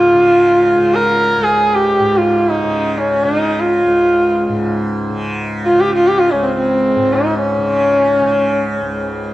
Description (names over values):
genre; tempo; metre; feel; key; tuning
indian classical, Hindustani; free time; none; none; Db raga yaman; A4 = 445 Hz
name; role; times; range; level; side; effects
dark sarangi; melody; 0.0-9.2 s; C4 to Bb4-21c; -12 LUFS; equal; none
tanpura; drone; 0.0-9.3 s; Db2 to Db3; -20 LUFS; equal; none
room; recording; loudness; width
moderate recital hall reverb, RT60 1.3 s; dark, warm production; -12 LUFS; side -16 dB against mid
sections
0.0-9.3 A section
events
none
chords
none